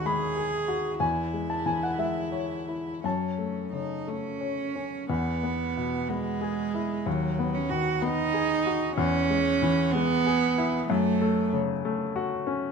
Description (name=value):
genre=neoclassical piano and strings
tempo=56-64 BPM (dotted quarters)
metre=6/8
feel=rubato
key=C# minor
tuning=A4 = 440 Hz
part: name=warm cello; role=second line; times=0.0-11.5 s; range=F#3 to G#4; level=-28 LUFS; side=right 6 dB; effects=none
part: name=warm baby grand piano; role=accompaniment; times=0.0-12.7 s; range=D#2 to D#6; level=-28 LUFS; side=left 4 dB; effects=none
room=moderate studio reverb, RT60 0.6 s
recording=none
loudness=-25 LUFS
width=side -5 dB against mid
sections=0.0-5.1 A section; 5.1-12.7 A section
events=none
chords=0.0 G#m7/D#; 1.0 C#m/E; 3.0 F#m; 5.1 E; 7.1 G#m7/D#; 9.0 C#m/E; 10.9 F#m